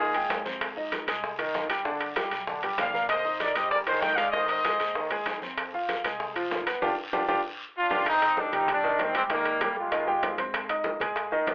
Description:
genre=latin, salsa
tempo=193 BPM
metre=4/4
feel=straight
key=C minor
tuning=A4 = 441 Hz
part: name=clear trumpet section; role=melody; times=0.0-0.4, 2.8-5.1, 7.8-10.4 s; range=G3 to G5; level=-25 LUFS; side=equal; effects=plate reverb
part: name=clear grand piano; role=accompaniment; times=0.0-11.5 s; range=D3 to Eb6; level=-29 LUFS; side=equal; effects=none
part: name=upright bass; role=bass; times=0.0-11.5 s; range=G1 to Ab2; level=-50 LUFS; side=equal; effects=none
part: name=congas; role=percussion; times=0.0-11.5 s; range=none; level=-40 LUFS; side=equal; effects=none
part: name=bongos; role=percussion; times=0.1-11.5 s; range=none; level=-35 LUFS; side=left 1 dB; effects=none
part: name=timbales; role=percussion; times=0.1-11.5 s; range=none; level=-32 LUFS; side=right 1 dB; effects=none
part: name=guiro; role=percussion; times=0.3-8.0 s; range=none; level=-38 LUFS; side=left 1 dB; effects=none
room=moderate studio reverb, RT60 0.5 s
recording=telephone sound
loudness=-25 LUFS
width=side -22 dB against mid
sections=0.0-8.1 A section; 8.1-11.5 A section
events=band accent 6.8-8.1; drum fill 7.3-8.1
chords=0.0 Abmaj7; 1.9 G; 3.1 Cm7; 4.3 Ab; 5.6 Fm; 6.8 G5; 8.1 Cmadd9; 9.3 Abmaj7; 10.5 Ab

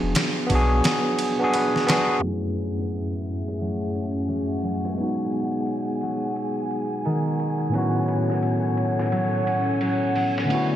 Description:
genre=trip hop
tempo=87 BPM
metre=4/4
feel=swing 60% on 16ths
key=F# minor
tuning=A4 = 440 Hz
part: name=overdriven tine electric piano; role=accompaniment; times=0.0-10.8 s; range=F#2 to G#4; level=-24 LUFS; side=equal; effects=harmonic tremolo, vintage 12-bit sampler grit, tape echo
part: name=concert harp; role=arpeggios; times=0.0-10.8 s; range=D#3 to C#4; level=-28 LUFS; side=right 1 dB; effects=low-pass filter, ping-pong delay
part: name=warm sub bass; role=bass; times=0.0-0.8 s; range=E1 to B1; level=-22 LUFS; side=equal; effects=none
part: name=trip hop sampler-style drum kit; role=drums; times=0.2-10.7 s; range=hi-hat, kick drum, ride cymbal, snare drum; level=-27 LUFS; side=equal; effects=high-pass filter on cymbals, high-pass filter on kick, high-pass filter on snare, high-pass filter on hats, gated reverb
part: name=dark analog pad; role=sustained chords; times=2.2-10.8 s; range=A3 to F#5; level=-29 LUFS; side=left 1 dB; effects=chorus
part: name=wind-like tuned noise texture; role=texture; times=4.6-10.8 s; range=G#5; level=-35 LUFS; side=right 2 dB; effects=built-in reverb
room=moderate lush hall reverb, RT60 2.6 s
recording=bright 1980s-style digital production, low-pass filter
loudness=-21 LUFS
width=side -11 dB against mid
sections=0.0-2.2 A section; 2.2-10.8 B section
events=filter sweep on harp 0.0-2.2, 2.2-10.8; filter sweep 2.2-10.8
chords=0.0 E7 (rootless); 2.2 F#m9; 5.0 G#m7; 7.7 A69

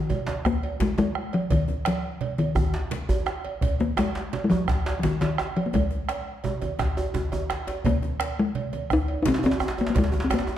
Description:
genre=west african traditional, West African drum ensemble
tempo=114 BPM (dotted quarters)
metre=12/8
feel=straight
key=Ab major pentatonic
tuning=A4 = 441 Hz
part: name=talking drum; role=melody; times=0.0-10.6 s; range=Eb3 to Eb4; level=-25 LUFS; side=left 3 dB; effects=none
part: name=congas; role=percussion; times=0.1-10.4 s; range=none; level=-34 LUFS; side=right 5 dB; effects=none
part: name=cowbell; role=percussion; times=0.1-10.5 s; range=none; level=-35 LUFS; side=right 7 dB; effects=none
part: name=djembe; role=percussion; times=0.1-10.6 s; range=none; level=-30 LUFS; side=right 1 dB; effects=none
part: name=djembe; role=percussion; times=0.3-10.5 s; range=none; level=-31 LUFS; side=left 2 dB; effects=none
part: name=bombo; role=percussion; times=0.5-10.5 s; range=none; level=-29 LUFS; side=right 2 dB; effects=none
room=wet recital hall reverb, RT60 1.4 s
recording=dark, warm production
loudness=-23 LUFS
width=side -11 dB against mid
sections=0.0-10.6 A section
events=drum fill 7.1-7.8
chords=none

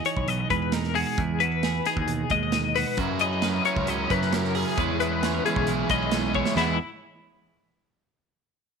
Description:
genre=math rock and midwest emo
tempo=134 BPM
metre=4/4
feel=straight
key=E lydian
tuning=A4 = 441 Hz
part: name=twelve-string electric guitar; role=accompaniment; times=0.0-6.8 s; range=B2 to B4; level=-30 LUFS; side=right 12 dB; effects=none
part: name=twelve-string electric guitar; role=arpeggios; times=0.0-6.8 s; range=E4 to D#5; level=-26 LUFS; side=left 11 dB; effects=tremolo, slapback echo
part: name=modern studio drum kit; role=drums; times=0.1-6.7 s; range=hi-hat, kick drum, snare drum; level=-31 LUFS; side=right 4 dB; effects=none
part: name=growling picked electric bass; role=bass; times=0.2-6.8 s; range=B1 to F#2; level=-30 LUFS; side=equal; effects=overdrive
part: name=overdriven semi-hollow guitar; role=riff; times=3.0-6.8 s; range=E3 to A#4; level=-28 LUFS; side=right 1 dB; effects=none
room=light reverb, small room ambience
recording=1960s-style stereo with parts hard left and right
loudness=-22 LUFS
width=side -6 dB against mid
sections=0.0-6.6 A section; 6.6-8.4 B section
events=drum fill 6.3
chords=0.0 Emaj9; 3.0 F#13; 4.8 C#m7; 6.6 Emaj7

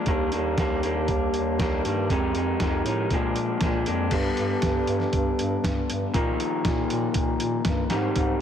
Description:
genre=indie rock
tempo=118 BPM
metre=4/4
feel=straight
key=unclear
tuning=A4 = 440 Hz
part: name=electric guitar through a small old amp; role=riff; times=0.0-8.4 s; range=F2 to Eb4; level=-25 LUFS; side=left 1 dB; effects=spring reverb
part: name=warm bass clarinet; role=bass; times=0.1-8.3 s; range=Eb2 to Bb2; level=-29 LUFS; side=right 1 dB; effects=none
part: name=lo-fi sampler-style drum kit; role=drums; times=0.1-8.3 s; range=crash cymbal, hi-hat, kick drum, snare drum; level=-27 LUFS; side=right 1 dB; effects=none
room=little or no reverb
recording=heavily compressed radio sound, multiband compression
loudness=-22 LUFS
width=side -8 dB against mid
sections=0.0-4.1 A section; 4.1-8.4 B section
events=none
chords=0.1 Ebmaj7; 2.1 Fm7; 3.1 Bb7; 4.1 G; 6.1 Bbsus4

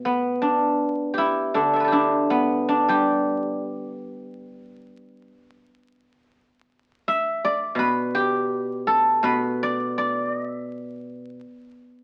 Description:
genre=chinese traditional, Chinese solo plucked strings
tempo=70-86 BPM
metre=4/4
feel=rubato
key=unclear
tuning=A4 = 440 Hz
part: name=guzheng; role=solo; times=0.0-11.7 s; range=B2 to E5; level=-23 LUFS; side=equal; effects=none
room=moderate studio reverb, RT60 0.8 s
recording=very old 78 rpm record, vinyl crackle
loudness=-23 LUFS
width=mono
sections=0.0-6.3 A section; 6.3-12.0 B section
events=none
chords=none

